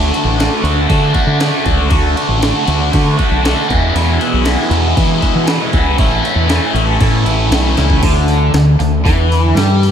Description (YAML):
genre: psychedelic rock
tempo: 118 BPM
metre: 4/4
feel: straight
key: D lydian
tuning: A4 = 437 Hz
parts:
  - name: cranked stack guitar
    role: riff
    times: 0.0-9.9 s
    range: E2 to F#4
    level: -14 LUFS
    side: equal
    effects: overdrive, phaser
  - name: growling fingered electric bass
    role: bass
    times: 0.0-9.9 s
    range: A1 to E3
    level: -15 LUFS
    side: equal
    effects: overdrive
  - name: jungle sampler-style drum kit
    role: drums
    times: 0.1-9.9 s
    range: crash cymbal, hi-hat, kick drum, ride cymbal, snare drum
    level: -18 LUFS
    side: equal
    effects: overdrive
room: moderate cathedral reverb, RT60 7.4 s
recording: dreamy mix soaked in reverb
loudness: -11 LUFS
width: side -8 dB against mid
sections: 0.0-8.0 A section; 8.0-9.9 B section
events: drum fill 7.8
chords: 0.0 D; 3.7 E; 6.0 A; 8.0 Dsus24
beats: 0.38 0.89 1.40 | 1.91 2.42 2.92 3.44 | 3.94 4.45 4.96 5.47 | 5.99 6.50 7.00 7.52 | 8.03 8.54 9.05 9.56